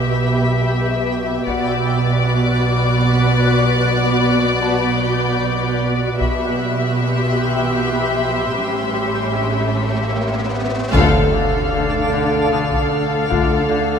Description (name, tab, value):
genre	cinematic, suspense film score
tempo	76 BPM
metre	3/4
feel	straight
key	B minor, D phrygian from 10.9 s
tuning	A4 = 438 Hz
part	warm studio violin section	melody	0.0-14.0 s	D5 to F5	-23 LUFS	left 5 dB	none
part	dark studio viola section	accompaniment	0.0-14.0 s	D3 to G4	-24 LUFS	right 1 dB	none
part	twinkling granular texture	sustained chords	0.0-14.0 s	B3 to F5	-24 LUFS	left 1 dB	built-in reverb
part	dark studio cello section	bass	0.0-14.0 s	D2 to B2	-23 LUFS	right 4 dB	none
part	warm studio double bass section	bass	0.0-14.0 s	A1 to D2	-23 LUFS	right 2 dB	none
part	taiko ensemble	drums	1.5-14.0 s	none	-23 LUFS	left 1 dB	none
part	Celtic harp	texture	1.5-14.0 s	E5 to Eb6	-32 LUFS	left 6 dB	none
part	warm studio violin section	texture	1.5-10.5 s	B5 to F#6	-28 LUFS	left 3 dB	none
part	riser and impact	sound effects	7.7-13.3 s	none	-26 LUFS	equal	none
part	warm studio violin section	second line	10.9-14.0 s	A4	-22 LUFS	right 2 dB	none
part	dark French horn section	sustained chords	10.9-13.6 s	A3 to F4	-25 LUFS	left 6 dB	none
part	Celtic harp	riff	10.9-14.0 s	D3 to D4	-23 LUFS	left 7 dB	none
part	timpani	percussion	10.9-12.1 s	D3	-25 LUFS	left 3 dB	none
room	light reverb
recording	close, detailed microphones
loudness	-15 LUFS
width	side -7 dB against mid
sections	0.0-10.9 A section; 10.9-14.0 B section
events	riser 7.7-10.9; band accent 10.9-11.7; impact 10.9-13.3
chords	0.0 Em/B; 1.5 Bm; 6.2 Em/B; 8.6 A7; 10.9 Dm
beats	0.68 | 1.47 2.26 3.05 | 3.84 4.63 5.42 | 6.21 7.00 7.79 | 8.58 9.37 10.15 | 10.94 11.73 12.52 | 13.31